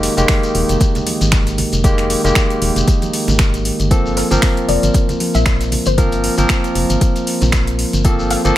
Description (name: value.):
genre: deep house.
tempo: 116 BPM.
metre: 4/4.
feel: swing 56% on 16ths.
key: unclear.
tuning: A4 = 436 Hz.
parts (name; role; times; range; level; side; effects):
barky tine electric piano; stabs; 0.0-8.6 s; Eb3 to Bb4; -18 LUFS; equal; digital delay.
organ-like FM bass; bass; 0.0-8.5 s; Eb1 to Bb1; -18 LUFS; equal; sidechain pumping.
breakbeat sampler-style drum kit; drums; 0.0-8.4 s; hi-hat, snare drum, tambourine; -30 LUFS; left 2 dB; none.
deep house drum kit; drums; 0.0-8.5 s; finger snaps, hi-hat; -21 LUFS; right 1 dB; overdrive.
shekere; percussion; 0.2-8.5 s; none; -27 LUFS; left 2 dB; none.
electronic kick drum; drums; 0.3-8.2 s; none; -15 LUFS; equal; overdrive.
congas; percussion; 0.6-7.5 s; none; -27 LUFS; right 2 dB; none.
soft round pluck; melody; 4.2-8.6 s; Bb4 to F5; -24 LUFS; left 4 dB; wide subtle chorus, digital delay.
room: digital ambience.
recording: none.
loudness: -13 LUFS.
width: side -14 dB against mid.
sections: 0.0-8.6 A section.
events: none.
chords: 0.0 Fm11; 3.9 Gm11.